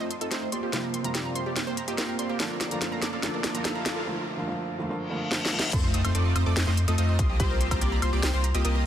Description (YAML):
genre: future bass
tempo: 144 BPM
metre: 4/4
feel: half-time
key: Bb major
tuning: A4 = 442 Hz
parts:
  - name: felt-muted upright piano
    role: accompaniment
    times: 0.0-5.8 s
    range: C3 to F4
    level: -35 LUFS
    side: right 1 dB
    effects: sidechain pumping, dub echo
  - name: wide unison pluck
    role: arpeggios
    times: 0.0-8.8 s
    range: G4 to Eb6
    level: -36 LUFS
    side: right 3 dB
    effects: sidechain pumping, dub echo
  - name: big bright polysynth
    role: riff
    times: 0.0-8.8 s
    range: A3 to F5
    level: -31 LUFS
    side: equal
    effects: wide subtle chorus, sidechain pumping, dub echo
  - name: riser, reverse cymbal and impact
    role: sound effects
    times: 2.0-7.4 s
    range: none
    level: -37 LUFS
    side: left 1 dB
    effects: none
  - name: trap drum kit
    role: drums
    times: 0.1-8.7 s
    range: crash cymbal, hi-hat, snare drum, woodblock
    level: -31 LUFS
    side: equal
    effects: soft clipping on snare, studio reverb
  - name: wide unison pluck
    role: arpeggios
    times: 5.7-8.8 s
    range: C6 to Eb6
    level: -37 LUFS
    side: right 1 dB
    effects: vintage 12-bit sampler grit, sidechain pumping, dub echo
  - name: saturated sub bass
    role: bass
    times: 5.7-8.8 s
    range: C2 to F2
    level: -25 LUFS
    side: equal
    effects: sidechain pumping
  - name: electronic kick drum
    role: drums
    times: 5.7-7.8 s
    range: none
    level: -26 LUFS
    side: equal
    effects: overdrive, studio reverb
room: light reverb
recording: dense, heavily limited modern master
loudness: -24 LUFS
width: side -10 dB against mid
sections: 0.0-5.7 A section; 5.7-8.9 B section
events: build-up 0.0-5.7; drum fill 0.0-4.1, 5.3-5.7; filter sweep on analog polysynth 0.0-5.7; reverse cymbal 5.0-5.7; drop 5.7-8.9; impact 5.7-7.4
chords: 0.0 F7; 0.5 C7sus4; 2.4 Bbmaj7/D; 5.7 F7; 7.2 C7sus4